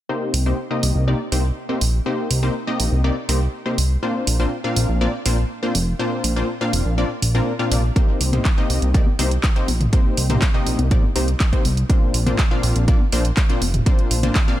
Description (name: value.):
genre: progressive house.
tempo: 122 BPM.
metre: 4/4.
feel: straight.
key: C minor.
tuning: A4 = 436 Hz.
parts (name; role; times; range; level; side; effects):
supersaw stab; stabs; 0.1-14.6 s; Bb2 to F5; -23 LUFS; left 2 dB; sidechain pumping, low-pass filter, digital delay.
fat analog bass; bass; 0.3-14.3 s; F1 to C2; -20 LUFS; equal; tube saturation, sidechain pumping.
house drum kit; drums; 0.3-14.5 s; handclaps, hi-hat; -25 LUFS; right 2 dB; overdrive.
electronic kick drum; drums; 8.0-14.5 s; none; -17 LUFS; equal; overdrive.
electronic toms and congas; percussion; 8.3-14.3 s; none; -27 LUFS; left 1 dB; sidechain pumping on toms, sidechain pumping on perc.
room: little or no reverb.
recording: none.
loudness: -17 LUFS.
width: side -13 dB against mid.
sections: 0.1-14.6 A section.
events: filter sweep on analog synth bass 0.1-14.6.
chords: 0.1 Cm7; 4.0 Bbadd9; 8.0 Cm7; 11.9 Bbadd9.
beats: | 0.09 0.58 1.08 1.57 | 2.06 2.55 3.04 3.54 | 4.03 4.52 5.01 5.50 | 5.99 6.49 6.98 7.47 | 7.96 8.45 8.95 9.44 | 9.93 10.42 10.91 11.40 | 11.89 12.39 12.88 13.37 | 13.86 14.35.